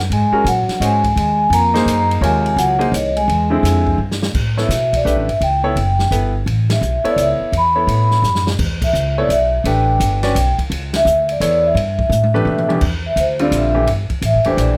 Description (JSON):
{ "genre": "modal jazz", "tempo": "170 BPM", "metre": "3/4", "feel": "swing 64% on 8ths", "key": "Ab mixolydian, A mixolydian from 4.3 s", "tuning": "A4 = 440 Hz", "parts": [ { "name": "upright bass", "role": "bass", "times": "0.0-14.8 s", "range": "E1 to B2", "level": "-21 LUFS", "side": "equal", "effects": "none" }, { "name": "vibraphone with soft mallets", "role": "melody", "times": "0.1-14.8 s", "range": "C5 to B5", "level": "-19 LUFS", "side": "equal", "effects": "none" }, { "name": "breathy trombone", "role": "second line", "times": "0.1-4.0 s", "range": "Db3 to Bb3", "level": "-25 LUFS", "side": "equal", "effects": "none" }, { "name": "open jazz drum kit", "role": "drums", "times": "0.1-14.7 s", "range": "crash cymbal, hi-hat, kick drum, ride cymbal, snare drum, toms", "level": "-27 LUFS", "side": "equal", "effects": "none" }, { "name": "bright concert grand piano", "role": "accompaniment", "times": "0.3-14.8 s", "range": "C2 to Eb5", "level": "-22 LUFS", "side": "equal", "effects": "none" } ], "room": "light reverb", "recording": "close, detailed microphones", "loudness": "-16 LUFS", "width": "mono", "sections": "0.0-4.3 A section; 4.3-12.8 B section; 12.8-14.8 C section", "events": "drum fill 4.0-4.3, 8.2-8.6, 12.1-12.8; band accent 6.6, 8.8, 10.9; vibraphone solo 12.8-14.8", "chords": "0.0 Ab9; 3.3 E7alt; 4.3 A9; 11.8 G69; 12.8 C9" }